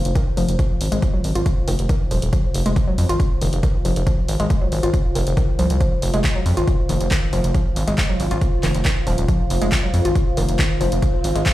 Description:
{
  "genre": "driving peak-time techno",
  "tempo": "138 BPM",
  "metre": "4/4",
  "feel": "straight",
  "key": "F minor",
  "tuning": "A4 = 440 Hz",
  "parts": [
    { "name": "warbly tape-like pad", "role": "texture", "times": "0.0-11.5 s", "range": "F4 to F5", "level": "-28 LUFS", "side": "left 1 dB", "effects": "chorus, built-in reverb, sidechain pumping" },
    { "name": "gritty driven synth bass", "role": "bass", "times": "0.1-11.4 s", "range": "Eb1 to F2", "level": "-20 LUFS", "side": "equal", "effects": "sidechain pumping" },
    { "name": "punchy analog drum machine", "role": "drums", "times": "0.1-11.5 s", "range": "handclaps, hi-hat", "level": "-28 LUFS", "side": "equal", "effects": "sidechain pumping on hats" },
    { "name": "woody wave-folded pluck", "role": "riff", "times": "0.2-11.4 s", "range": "Eb3 to F4", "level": "-25 LUFS", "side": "left 1 dB", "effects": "chorus, overdrive, sidechain pumping, tape echo" },
    { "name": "electronic kick drum", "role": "drums", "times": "0.2-11.5 s", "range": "none", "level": "-20 LUFS", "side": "equal", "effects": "none" },
    { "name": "riser", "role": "sound effects", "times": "10.3-11.5 s", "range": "none", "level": "-45 LUFS", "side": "equal", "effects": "none" }
  ],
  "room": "little or no reverb",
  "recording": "played on a big sound system in a bare room, large studio reverb",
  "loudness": "-17 LUFS",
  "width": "side -15 dB against mid",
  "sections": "0.0-11.5 A section",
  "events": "none",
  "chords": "0.0 Fm",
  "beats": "0.15 | 0.59 1.02 1.46 1.89 | 2.33 2.76 3.20 3.63 | 4.07 4.50 4.94 5.37 | 5.81 6.24 6.68 7.11 | 7.55 7.98 8.42 8.85 | 9.29 9.72 10.15 10.59 | 11.02 11.46"
}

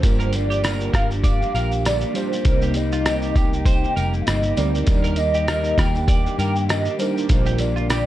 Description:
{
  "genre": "indie pop, bedroom pop",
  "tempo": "99 BPM",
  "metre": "4/4",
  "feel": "swing 55% on 16ths",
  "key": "G minor",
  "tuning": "A4 = 440 Hz",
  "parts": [
    { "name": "hollow clarinet-like synth lead", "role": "melody", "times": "0.0-8.1 s", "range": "C5 to G5", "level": "-25 LUFS", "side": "right 1 dB", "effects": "ensemble chorus, analog delay" },
    { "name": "electric guitar at the edge of break-up", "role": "accompaniment", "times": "0.0-8.1 s", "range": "G2 to G4", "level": "-28 LUFS", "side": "left 4 dB", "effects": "lush chorus, warbly pitch drift" },
    { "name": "warbly lo-fi synth keys", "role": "accompaniment", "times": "0.0-8.1 s", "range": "G3 to C5", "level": "-29 LUFS", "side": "right 5 dB", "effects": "chorus" },
    { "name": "warbly tape-like pad", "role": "sustained chords", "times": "0.8-8.1 s", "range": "C3 to G4", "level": "-33 LUFS", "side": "right 2 dB", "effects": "chorus, built-in reverb" },
    { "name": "vintage muted fingered electric bass", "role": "bass", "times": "0.0-8.1 s", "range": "F1 to G2", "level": "-23 LUFS", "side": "equal", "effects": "none" },
    { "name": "lo-fi sampler-style drum kit", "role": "drums", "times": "0.0-8.1 s", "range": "hi-hat, kick drum, rim click, shaker", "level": "-21 LUFS", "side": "equal", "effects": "none" },
    { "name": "tambourine", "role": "percussion", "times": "0.0-8.1 s", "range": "none", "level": "-43 LUFS", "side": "left 5 dB", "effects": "none" },
    { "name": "twelve-string electric guitar", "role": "second line", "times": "0.2-8.1 s", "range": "F4 to D5", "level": "-32 LUFS", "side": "right 5 dB", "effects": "wide subtle chorus, analog delay" }
  ],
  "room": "light reverb",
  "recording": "dark, warm production",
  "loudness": "-18 LUFS",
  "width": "side -14 dB against mid",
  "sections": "0.0-8.1 A section",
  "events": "none",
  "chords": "0.0 Gm7; 2.5 Cm7; 4.9 Ebmaj7; 7.3 Bb6",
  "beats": "| 0.03 0.64 1.24 1.85 | 2.45 3.06 3.66 4.27 | 4.88 5.48 6.09 6.69 | 7.30 7.90"
}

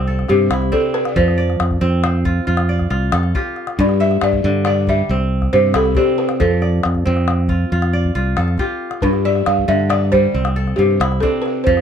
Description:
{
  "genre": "west african traditional, West African string and xylophone music",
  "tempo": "92 BPM (dotted quarters)",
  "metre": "12/8",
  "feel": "straight",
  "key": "unclear",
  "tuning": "A4 = 440 Hz",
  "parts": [
    { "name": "balafon", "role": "melody", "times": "0.0-11.8 s", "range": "G4 to F5", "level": "-18 LUFS", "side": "equal", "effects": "none" },
    { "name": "kora", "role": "arpeggios", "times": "0.0-11.8 s", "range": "G2 to E5", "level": "-20 LUFS", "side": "equal", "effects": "none" },
    { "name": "modern bright fingered electric bass", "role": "bass", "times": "0.0-11.8 s", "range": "C2 to G2", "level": "-17 LUFS", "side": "equal", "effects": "none" },
    { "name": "calabash", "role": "percussion", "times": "0.2-11.8 s", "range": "none", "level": "-23 LUFS", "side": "left 3 dB", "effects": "none" }
  ],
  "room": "light reverb",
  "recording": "close, detailed microphones",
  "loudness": "-14 LUFS",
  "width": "side -8 dB against mid",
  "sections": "0.0-11.8 A section",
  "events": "none",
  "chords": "0.0 C; 1.2 F; 3.8 G5; 5.1 C; 6.4 F; 9.0 G5; 10.3 C",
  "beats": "0.51 | 1.17 1.82 2.48 3.13 | 3.79 4.44 5.09 5.75 | 6.41 7.06 7.72 8.37 | 9.03 9.69 10.34 11.00 | 11.66"
}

